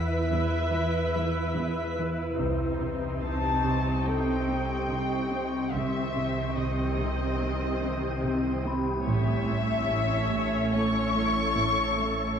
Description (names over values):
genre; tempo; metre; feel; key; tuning
cinematic; 72 BPM; 4/4; straight; unclear; A4 = 441 Hz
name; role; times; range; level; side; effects
muted chamber violin section; melody; 0.0-12.4 s; Eb5 to C#6; -31 LUFS; left 4 dB; none
muted symphonic viola section; accompaniment; 0.0-12.4 s; Eb3 to C#5; -35 LUFS; right 2 dB; none
wind-like tuned noise texture; sustained chords; 0.0-12.4 s; C4 to Eb6; -33 LUFS; left 1 dB; built-in reverb
muted symphonic cello section; riff; 0.0-12.2 s; E2 to C4; -35 LUFS; right 2 dB; none
muted symphonic cello section; bass; 0.0-12.4 s; E2 to C3; -32 LUFS; right 2 dB; none
organ-like drone; drone; 0.0-12.4 s; A1 to E2; -32 LUFS; equal; ensemble chorus, built-in reverb
celesta; texture; 0.0-12.4 s; A4 to B5; -39 LUFS; left 6 dB; none
muted symphonic violin section; texture; 0.0-8.6 s; E5 to B6; -42 LUFS; left 3 dB; none
muted symphonic double bass section; bass; 2.4-9.9 s; A1 to C2; -34 LUFS; right 3 dB; none
room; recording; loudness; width
wet scoring stage reverb, RT60 1.8 s; none; -25 LUFS; side -7 dB against mid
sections
0.0-12.4 A section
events
none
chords
0.0 E5; 2.4 Cm; 9.1 A